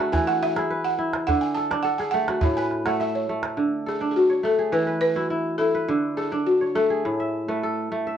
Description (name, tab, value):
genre	west african traditional, West African string and xylophone music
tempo	104 BPM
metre	4/4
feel	straight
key	D lydian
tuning	A4 = 440 Hz
part	balafon	melody	0.0-7.6 s	F#4 to A5	-23 LUFS	left 1 dB	plate reverb
part	kora	arpeggios	0.0-8.2 s	A2 to E5	-24 LUFS	right 1 dB	none
part	calabash	percussion	0.1-3.6 s	none	-27 LUFS	right 2 dB	none
room	wet studio reverb, RT60 0.5 s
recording	worn, warbling old tape, cassette tape, warbly pitch drift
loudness	-21 LUFS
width	side -9 dB against mid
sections	0.0-3.6 A section; 3.6-8.2 B section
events	balafon solo 0.0-3.6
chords	0.1 E; 1.3 D; 2.4 A; 3.6 D5; 4.7 E; 5.9 D5; 7.0 A5